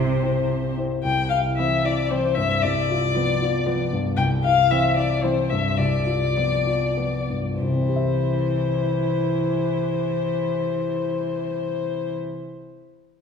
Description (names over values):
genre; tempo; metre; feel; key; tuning
quick classical-period movement for piano trio; 92-116 BPM; 3/4; rubato; C major; A4 = 441 Hz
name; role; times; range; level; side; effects
rich violin; melody; 0.0-12.1 s; C5 to G5; -24 LUFS; left 6 dB; none
warm cello; second line; 0.0-12.1 s; C3 to F3; -28 LUFS; right 3 dB; none
warm grand piano; accompaniment; 0.0-12.6 s; C2 to E5; -24 LUFS; left 1 dB; none
room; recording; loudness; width
wet scoring stage reverb, RT60 1.5 s; heard from further back in the room; -20 LUFS; side -6 dB against mid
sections
0.0-1.1 A section; 1.1-7.6 B section; 7.6-11.4 C section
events
slowing down 3.4-7.6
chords
0.0 C; 2.6 G7/C; 4.2 C; 5.8 G7/C; 7.6 C